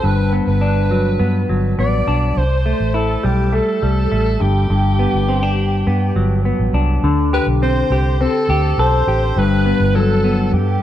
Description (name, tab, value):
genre	indie pop, bedroom pop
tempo	103 BPM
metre	4/4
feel	straight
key	G major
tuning	A4 = 438 Hz
part	clear alto saxophone	melody	0.0-10.8 s	G4 to D5	-21 LUFS	right 1 dB	ensemble chorus, analog delay
part	semi-hollow electric guitar	accompaniment	0.0-10.8 s	G2 to A4	-18 LUFS	left 2 dB	wide subtle chorus, warbly pitch drift
part	vintage muted fingered electric bass	bass	0.0-10.8 s	G1 to G2	-17 LUFS	right 1 dB	none
room	light reverb, small room reverb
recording	dark, warm production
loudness	-14 LUFS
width	side -11 dB against mid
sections	0.0-7.0 A section; 7.0-10.8 B section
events	none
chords	0.0 Gmaj7; 2.4 C6; 4.4 Gmaj7; 7.0 D7sus4; 9.4 Gmaj7